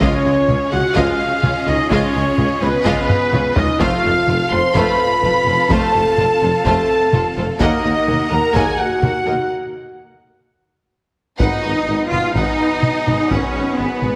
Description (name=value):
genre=cinematic, epic orchestral film score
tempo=126 BPM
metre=4/4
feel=straight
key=Db mixolydian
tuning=A4 = 440 Hz
part: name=rich studio violin section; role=melody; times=0.0-14.2 s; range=Cb5 to C6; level=-30 LUFS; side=equal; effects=none
part: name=flute section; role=second line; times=0.0-9.5 s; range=Cb5 to C6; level=-27 LUFS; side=equal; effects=none
part: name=warm symphonic violin section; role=second line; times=0.0-14.1 s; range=F4 to Gb5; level=-30 LUFS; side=equal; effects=none
part: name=rich symphonic viola section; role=accompaniment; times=0.0-14.2 s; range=Ab3 to Bb4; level=-30 LUFS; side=equal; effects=none
part: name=dark French horn section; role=sustained chords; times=0.0-14.2 s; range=Cb4 to C5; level=-24 LUFS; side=equal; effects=none
part: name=rich symphonic string section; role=sustained chords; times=0.0-14.2 s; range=Bb3 to Gb5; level=-29 LUFS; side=equal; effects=none
part: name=warm trombone section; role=sustained chords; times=0.0-14.2 s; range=F3 to Cb4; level=-31 LUFS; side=equal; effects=none
part: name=mellow trumpet section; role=stabs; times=0.0-14.2 s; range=Cb5 to C6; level=-24 LUFS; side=equal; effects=none
part: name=clear symphonic cello section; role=bass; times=0.0-14.2 s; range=Db2 to F4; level=-26 LUFS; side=equal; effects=none
part: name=mellow tuba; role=bass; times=0.0-14.1 s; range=F1 to Eb2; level=-28 LUFS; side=equal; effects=none
part: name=rich symphonic double bass section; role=bass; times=0.0-14.1 s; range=F1 to Eb2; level=-28 LUFS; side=equal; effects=none
part: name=taiko ensemble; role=drums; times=0.0-14.2 s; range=none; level=-25 LUFS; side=equal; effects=none
part: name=timpani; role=percussion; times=0.0-0.7, 11.4-12.1 s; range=Ab2 to Db3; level=-30 LUFS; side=equal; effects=none
room=wet scoring stage reverb, RT60 1.5 s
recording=heavily compressed radio sound, multiband compression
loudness=-17 LUFS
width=mono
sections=0.0-11.4 A section; 11.4-14.2 B section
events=drum fill 3.1-3.8, 10.7-11.4; break 9.5-11.4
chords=0.0 Dbadd9; 3.8 F; 7.6 Ebm; 11.4 Abm7